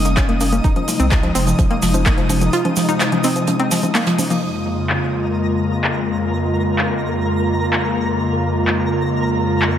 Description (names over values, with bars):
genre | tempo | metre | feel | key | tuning
progressive house | 127 BPM | 4/4 | straight | unclear | A4 = 441 Hz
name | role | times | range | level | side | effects
airy breathy pad | sustained chords | 0.0-9.8 s | F2 to F4 | -19 LUFS | left 1 dB | chorus, sidechain pumping
analog pluck | arpeggios | 0.0-4.4 s | F3 to F4 | -20 LUFS | equal | chorus, vintage 12-bit sampler grit, sidechain pumping, tape echo
saturated sub bass | bass | 0.0-2.5 s | F1 to C2 | -20 LUFS | equal | sidechain pumping
jazz brush drum kit | drums | 0.0-4.4 s | hi-hat, snare drum | -32 LUFS | right 3 dB | sidechain pumping on hats, high-pass filter on hats, high-pass filter on snare, high-pass filter on room
cabasa | percussion | 0.0-4.4 s | none | -28 LUFS | right 3 dB | none
twinkling granular texture | texture | 0.0-9.8 s | Bb4 to Eb6 | -26 LUFS | equal | built-in reverb, sidechain pumping
deep house drum kit | drums | 0.1-9.7 s | handclaps, hi-hat | -23 LUFS | equal | overdrive, sidechain pumping on hats, low-pass filter on hats, low-pass filter on snare, low-pass filter on room
congas | percussion | 0.1-4.3 s | none | -29 LUFS | equal | sidechain pumping on perc
electronic kick drum | drums | 0.2-2.2 s | none | -17 LUFS | equal | overdrive
room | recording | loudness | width
moderate plate reverb, RT60 2.0 s, digital ambience | dreamy mix soaked in reverb | -15 LUFS | side -10 dB against mid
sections
0.0-4.4 A section; 4.4-9.8 B section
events
none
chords
0.0 Eb7/F; 0.6 Fm7; 4.4 Db6/F